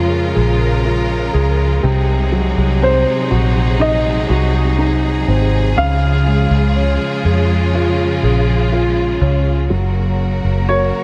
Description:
pop ballad; 61 BPM; 4/4; straight; A4 = 440 Hz
warm concert grand piano; accompaniment; 0.0-11.0 s; B#2 to A#4; -22 LUFS; equal
clear studio string section; sustained chords; 0.0-11.0 s; B#2 to A#4; -23 LUFS; equal
vintage muted fingered electric bass; bass; 0.0-10.9 s; F#1 to E#2; -18 LUFS; equal
downlifter; sound effects; 0.0-1.8 s; barely audible
warm baby grand piano; melody; 2.8-11.0 s; B#4 to E#5; -23 LUFS; equal
moderate huge ambient reverb, RT60 4.1 s; dreamy mix soaked in reverb; -15 LUFS; mono
0.0-9.7 A section; 9.7-11.0 B section
0.0 C#; 1.8 G#7; 5.8 C#; 9.7 F#
0.85 | 1.83 2.82 3.80 4.79 | 5.77 6.75 7.74 8.72 | 9.70 10.69

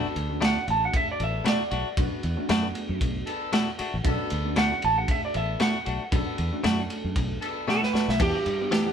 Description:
straight-eighth soul blues; 116 BPM; 4/4; swing 55% on 16ths; B minor; A4 = 442 Hz
reed electric piano; accompaniment; 0.0-8.9 s; G3 to F#5; -34 LUFS; right 1 dB; phaser
warm horn section; sustained chords; 0.0-8.7 s; B3 to A4; -35 LUFS; left 2 dB
direct-recorded clean electric guitar; stabs; 0.0-8.9 s; B2 to G4; -30 LUFS; left 4 dB
fingered electric bass; bass; 0.2-8.9 s; A1 to G2; -31 LUFS; equal
crunchy breakbeat drum kit; drums; 0.2-8.9 s; crash cymbal, kick drum, ride cymbal, snare drum; -27 LUFS; right 1 dB
clean lap steel guitar; second line; 0.4-8.9 s; G4 to A5; -27 LUFS; right 3 dB
light reverb; band playing live in one room; -23 LUFS; side -8 dB against mid
0.0-8.9 A section
electric slide guitar solo 0.0-8.9; drum fill 7.7-8.2
0.0 Bm7; 8.2 Em7
0.42 0.94 1.46 | 1.98 2.50 3.01 3.53 | 4.05 4.57 5.09 5.61 | 6.12 6.64 7.16 7.68 | 8.20 8.72

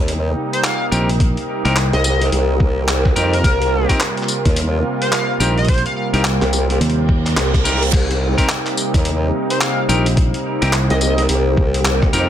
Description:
glitch hop; 107 BPM; 4/4; swing 61% on 16ths; C minor pentatonic; A4 = 445 Hz
warm analog pad; sustained chords; 0.0-12.3 s; C3 to F4; -24 LUFS; right 2 dB; lush chorus, sidechain pumping
formant-sweep wobble bass; bass; 0.0-12.3 s; C2 to F2; -18 LUFS; equal; chorus, tube saturation
warbly tape-like pad; texture; 0.0-12.3 s; C4 to C5; -25 LUFS; equal; chorus, built-in reverb, sidechain pumping
boom bap sampler-style drum kit; drums; 0.1-12.3 s; crash cymbal, handclaps, hi-hat, rim click, tambourine; -22 LUFS; left 1 dB
sync lead; melody; 0.5-6.1, 9.5-11.2 s; Bb4 to F5; -24 LUFS; left 1 dB; analog chorus, cassette tape, dub echo
semi-hollow electric guitar; stabs; 0.9-12.3 s; C4 to Bb4; -23 LUFS; left 1 dB; warbly pitch drift, sidechain pumping, dub echo
fingered electric bass; bass; 0.9-1.9, 5.4-10.9 s; Bb1 to Eb2; -18 LUFS; equal
electronic kick drum; drums; 1.2-12.1 s; -17 LUFS; equal
reverse cymbal; sound effects; 7.1-7.9 s; -24 LUFS; right 7 dB
light reverb; -14 LUFS; side -10 dB against mid
0.0-12.3 A section
reverse cymbal 7.1-7.9
0.0 Cm7
0.08 0.64 | 1.20 1.76 2.32 2.88 | 3.44 4.00 4.57 5.13 | 5.69 6.25 6.81 7.37 | 7.93 8.49 9.05 9.61 | 10.17 10.73 11.29 11.86

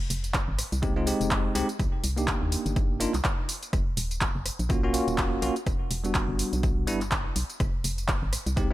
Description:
deep house; 124 BPM; 4/4; swing 57% on 16ths; A4 = 440 Hz
organ-like FM bass; bass; 0.1-8.7 s; Eb1 to Eb2; -30 LUFS; equal; tube saturation, sidechain pumping
deep house drum kit; drums; 0.1-8.7 s; handclaps, hi-hat, rim click, tambourine; -31 LUFS; equal; overdrive
electronic kick drum; drums; 0.3-8.7 s; -28 LUFS; equal
bell-like tine electric piano; stabs; 0.8-8.7 s; G3 to G4; -29 LUFS; equal; fast stereo tremolo, sidechain pumping, digital delay
little or no reverb; -25 LUFS; side -16 dB against mid
0.0-8.7 A section
0.0 Fm9; 1.8 Cm9; 3.7 Ebm9; 5.7 Em9; 7.6 Fm
0.34 0.83 1.31 | 1.79 2.28 2.76 3.25 | 3.73 4.21 4.70 5.18 | 5.67 6.15 6.63 7.12 | 7.60 8.09 8.57

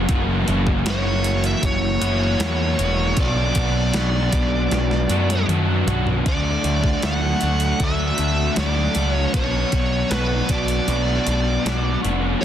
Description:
rock, shoegaze and dream pop; 78 BPM; 4/4; straight; A4 = 439 Hz
crunchy overdriven guitar; riff; 0.0-12.4 s; F#2 to F#4; -22 LUFS; equal; wide subtle chorus
growling picked electric bass; bass; 0.0-12.3 s; E1 to F#2; -22 LUFS; equal; overdrive
clean 12-bit digital drum machine; drums; 0.1-12.2 s; hi-hat, kick drum, snare drum, toms; -25 LUFS; equal
bluesy overdriven lead guitar; melody; 0.9-12.4 s; B4 to F#5; -25 LUFS; right 1 dB; distortion, slapback echo
digital ambience; dense, heavily limited modern master; -18 LUFS; side -10 dB against mid
0.0-6.3 A section; 6.3-12.4 B section
drum fill 4.7-6.3
0.1 F#7; 3.2 Bm; 6.3 D; 9.3 Bm
| 0.10 0.86 1.64 2.41 | 3.18 3.95 4.72 5.49 | 6.26 7.03 7.80 8.57 | 9.34 10.11 10.88 11.65 | 12.43

